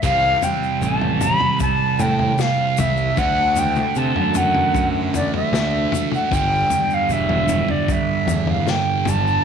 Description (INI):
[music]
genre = psychedelic rock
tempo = 76 BPM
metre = 4/4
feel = straight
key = unclear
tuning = A4 = 440 Hz
[part]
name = jazz flute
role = melody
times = 0.0-9.4 s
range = D5 to B5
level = -20 LUFS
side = left 1 dB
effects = slapback echo
[part]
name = thick fuzz guitar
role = riff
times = 0.0-9.4 s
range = G2 to D4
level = -22 LUFS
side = right 10 dB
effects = distortion, phaser
[part]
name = fuzz picked electric bass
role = bass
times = 0.0-9.4 s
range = E1 to C3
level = -24 LUFS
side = left 1 dB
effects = overdrive
[part]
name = vintage drum kit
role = drums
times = 0.0-9.2 s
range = kick drum, snare drum, toms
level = -25 LUFS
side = left 6 dB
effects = none
[part]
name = tube shaker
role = percussion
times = 0.0-9.4 s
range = none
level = -36 LUFS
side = left 19 dB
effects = none
[sound]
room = light reverb, small room reverb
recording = 1960s-style stereo with parts hard left and right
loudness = -16 LUFS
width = side -7 dB against mid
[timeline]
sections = 0.0-9.4 A section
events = none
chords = 0.0 C5; 3.2 D; 6.3 G5